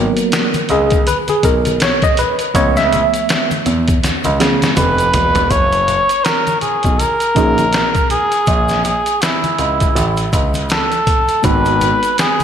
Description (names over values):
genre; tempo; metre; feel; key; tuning
hip hop, jazz-hop; 81 BPM; 4/4; swing 59% on 16ths; F# major; A4 = 440 Hz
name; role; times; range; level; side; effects
tine electric piano; accompaniment; 0.0-12.0 s; E#3 to E5; -17 LUFS; right 1 dB; overdrive, fast stereo tremolo, slapback echo
dark concert grand piano; bass; 0.0-11.9 s; E1 to C#3; -18 LUFS; right 1 dB; none
trip hop sampler-style drum kit; drums; 0.2-12.4 s; hi-hat, kick drum, snare drum, toms; -17 LUFS; equal; none
maracas and congas; percussion; 0.2-12.4 s; none; -28 LUFS; left 4 dB; none
trumpet with cup mute; melody; 4.8-12.4 s; E4 to C#5; -15 LUFS; equal; slapback echo
room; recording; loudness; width
moderate lush hall reverb, RT60 2.9 s; big arena sound; -12 LUFS; side -8 dB against mid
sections
0.0-5.5 A section; 5.5-12.4 B section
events
tine electric piano solo 0.0-5.5; drum fill 4.0-5.5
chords
0.0 G#m9; 2.5 C#7alt; 5.5 F#69; 8.5 A#dim; 10.0 A; 11.4 G#m7